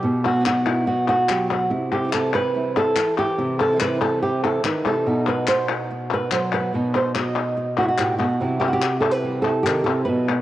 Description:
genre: flamenco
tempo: 143 BPM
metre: 4/4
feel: straight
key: unclear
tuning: A4 = 438 Hz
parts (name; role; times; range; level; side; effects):
- flamenco guitar; melody; 0.0-10.4 s; A2 to D#5; -20 LUFS; right 1 dB; cassette tape
- flamenco guitar; stabs; 0.0-10.4 s; B2 to F#4; -32 LUFS; right 4 dB; cassette tape
- palmas hand claps; percussion; 0.2-10.4 s; none; -26 LUFS; left 7 dB; none
room: moderate lush hall reverb, RT60 2.6 s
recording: home recording on cassette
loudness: -19 LUFS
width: side -14 dB against mid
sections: 0.0-10.4 A section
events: none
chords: 0.0 B; 1.7 C; 5.1 B; 8.4 C

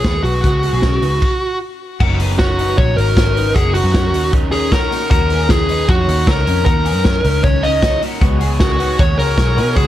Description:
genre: jangly indie pop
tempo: 154 BPM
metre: 4/4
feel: straight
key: F# major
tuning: A4 = 440 Hz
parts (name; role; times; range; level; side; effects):
- fuzz lead guitar; melody; 0.0-9.9 s; F#4 to D#5; -18 LUFS; equal; distortion
- overdriven semi-hollow guitar; accompaniment; 0.0-9.9 s; C#3 to A#4; -25 LUFS; right 5 dB; none
- twelve-string electric guitar; arpeggios; 0.0-9.9 s; A#3 to C#5; -24 LUFS; left 7 dB; ensemble chorus
- vintage muted picked electric bass; bass; 0.0-9.9 s; F#1 to B2; -18 LUFS; equal; none
- vintage drum kit; drums; 0.0-9.9 s; crash cymbal, hi-hat, kick drum, snare drum; -17 LUFS; equal; none
- mellow small flute group; sustained chords; 8.2-9.9 s; C#5 to C#6; -27 LUFS; right 2 dB; none
room: small room ambience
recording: none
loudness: -12 LUFS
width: side -12 dB against mid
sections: 0.0-2.0 A section; 2.0-9.9 B section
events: stop 1.2-2.0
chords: 0.0 D#m7; 2.0 F#6; 5.1 D#m7; 8.2 C#7sus4

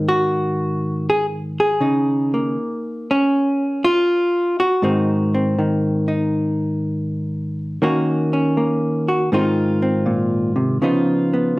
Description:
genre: solo jazz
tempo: 80 BPM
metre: 4/4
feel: swing 67% on 8ths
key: Ab mixolydian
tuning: A4 = 441 Hz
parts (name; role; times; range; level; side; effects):
- hollow-body jazz guitar; solo; 0.0-11.6 s; Ab2 to Ab4; -17 LUFS; equal; none
room: moderate large studio reverb, RT60 0.8 s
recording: none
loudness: -17 LUFS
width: side -21 dB against mid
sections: 0.0-11.6 A section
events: none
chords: 0.0 Ab7; 1.8 Db69; 4.8 Ab7; 7.8 Ebm7; 9.3 Ab69; 10.8 Db9

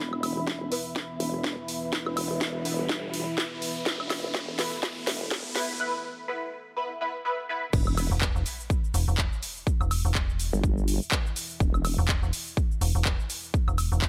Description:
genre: bass house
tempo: 124 BPM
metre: 4/4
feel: swing 57% on 16ths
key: unclear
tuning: A4 = 440 Hz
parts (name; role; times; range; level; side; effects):
- deep dark ambient pad; sustained chords; 0.0-14.1 s; E3 to E5; -41 LUFS; equal; chorus, built-in reverb, sidechain pumping
- vowel-sweep wobble bass; bass; 0.0-12.0 s; E1 to G1; -33 LUFS; equal; chorus, overdrive, sidechain pumping, high-pass filter
- riser and sub drop; sound effects; 1.6-9.7 s; none; -40 LUFS; equal; none
- airy breathy pad; texture; 0.0-5.8 s; B3 to B5; -41 LUFS; equal; chorus, sidechain pumping
- house drum kit; drums; 0.1-14.1 s; crash cymbal, handclaps, hi-hat, shaker, snare drum, woodblock; -33 LUFS; equal; overdrive
- electronic kick drum; drums; 0.5-14.1 s; none; -29 LUFS; equal; overdrive, high-pass filter on kick
- band-passed chord stab; stabs; 0.7-7.6 s; B3 to B4; -35 LUFS; equal; phaser, ensemble chorus, sidechain pumping, tape echo
- metallic FM bass; bass; 8.1-14.1 s; E1; -28 LUFS; equal; tube saturation, sidechain pumping
room: light reverb, digital ambience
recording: high-pass filter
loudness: -28 LUFS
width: mono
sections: 0.0-7.7 A section; 7.7-14.1 B section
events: build-up 0.0-7.7; drum fill 0.0-5.8; filter sweep on synth stab 0.0-7.7; riser 1.6-5.8; drop 7.7-14.1; impact 7.7-9.7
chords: 0.0 E5

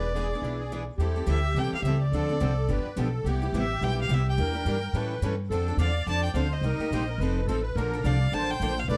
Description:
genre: acoustic string swing (jazz manouche)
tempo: 213 BPM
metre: 4/4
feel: swing 57% on 8ths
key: A minor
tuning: A4 = 440 Hz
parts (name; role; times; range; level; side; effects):
- warm violin; melody; 0.0-9.0 s; D5 to A5; -35 LUFS; equal; plate reverb
- musette accordion; second line; 0.0-9.0 s; E4 to D5; -36 LUFS; equal; none
- picked steel-string acoustic guitar; accompaniment; 0.0-9.0 s; B2 to A4; -37 LUFS; equal; none
- picked steel-string acoustic guitar; accompaniment; 0.0-9.0 s; B2 to B4; -38 LUFS; equal; none
- upright bass; bass; 0.0-9.0 s; E1 to A2; -30 LUFS; equal; none
room: light reverb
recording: dark, warm production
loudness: -27 LUFS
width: mono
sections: 1.0-9.0 A section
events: none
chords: 0.0 E7; 1.0 Am7; 2.1 Dm7; 2.7 G7; 3.3 Cmaj7; 4.4 Em7b5; 4.9 A7; 5.5 Dm7; 6.6 Cm7; 7.2 F7; 7.8 Bbmaj7

